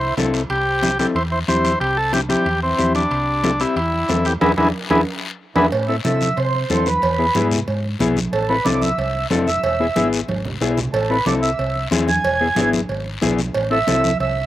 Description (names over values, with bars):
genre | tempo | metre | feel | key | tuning
latin, cumbia | 184 BPM | 4/4 | straight | A harmonic minor from 5.7 s | A4 = 440 Hz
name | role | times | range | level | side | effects
combo organ | melody | 0.0-5.7 s | C4 to C5 | -19 LUFS | equal | none
mellow accordion | second line | 0.0-14.5 s | E3 to G#5 | -22 LUFS | right 3 dB | slapback echo
hollow-body short-scale fingered electric bass | bass | 0.0-14.5 s | E1 to C3 | -24 LUFS | equal | none
congas | percussion | 0.0-14.5 s | none | -27 LUFS | right 2 dB | slapback echo
mellow electric guitar | accompaniment | 0.2-14.1 s | B3 to A4 | -21 LUFS | left 4 dB | none
guiro | percussion | 0.2-14.5 s | none | -31 LUFS | left 6 dB | none
timbales and cowbell | percussion | 0.2-14.4 s | none | -27 LUFS | right 4 dB | none
room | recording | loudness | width
little or no reverb | recorded outdoors, with no room sound | -16 LUFS | side -14 dB against mid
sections
0.0-5.7 A section; 5.7-14.5 B section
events
band accent 4.4-5.7; drum fill 4.9-5.7, 10.3-10.9; accordion solo 5.7-14.5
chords
0.0 Am; 0.5 C; 4.4 E7; 5.7 Am; 7.0 E; 8.3 Am; 9.6 E; 10.9 Am; 12.2 E; 13.6 Am